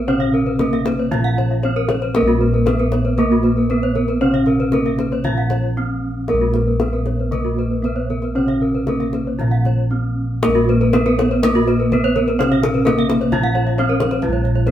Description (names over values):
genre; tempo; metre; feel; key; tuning
Balinese gamelan; 116-137 BPM; 4/4; straight; Bb pelog; A4 = 441 Hz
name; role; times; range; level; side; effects
gamelan-type bronze metallophone; melody; 0.0-14.7 s; Bb3 to F4-45c; -21 LUFS; equal; none
gamelan-type bronze metallophone; accompaniment; 0.0-14.7 s; C3+50c to Bb3; -26 LUFS; right 4 dB; none
gamelan-type bronze metallophone; arpeggios; 0.0-14.7 s; Bb4 to F5-45c; -23 LUFS; left 3 dB; none
gamelan-type bossed gongs; bass; 0.0-14.7 s; Bb1 to Bb4; -19 LUFS; equal; none
gamelan-type bronze metallophone; arpeggios; 0.2-14.7 s; Gb4-40c to Gb5-40c; -25 LUFS; right 5 dB; none
kendang; percussion; 0.2-14.7 s; none; -26 LUFS; left 3 dB; none
room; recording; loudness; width
moderate stone room reverb, RT60 1.0 s; band playing live in one room; -15 LUFS; side -11 dB against mid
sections
0.0-14.2 A section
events
break 5.5-6.3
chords
none